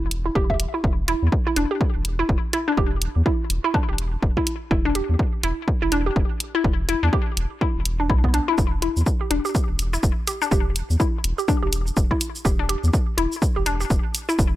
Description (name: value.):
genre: minimal techno.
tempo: 124 BPM.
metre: 4/4.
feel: swing 60% on 16ths.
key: E minor.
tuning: A4 = 440 Hz.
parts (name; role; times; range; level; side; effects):
round analog bass; bass; 0.0-14.6 s; E1 to E2; -24 LUFS; equal; sidechain pumping.
electronic hi-hat and cabasa; drums; 0.1-14.5 s; none; -28 LUFS; equal; none.
hollow square pluck; riff; 0.3-14.3 s; B3 to E5; -25 LUFS; equal; chorus, sidechain pumping, ping-pong delay.
electronic kick drum; drums; 0.4-14.5 s; none; -22 LUFS; equal; none.
room: little or no reverb.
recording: none.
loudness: -20 LUFS.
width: side -15 dB against mid.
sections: 0.0-14.6 A section.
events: none.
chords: 0.0 E5.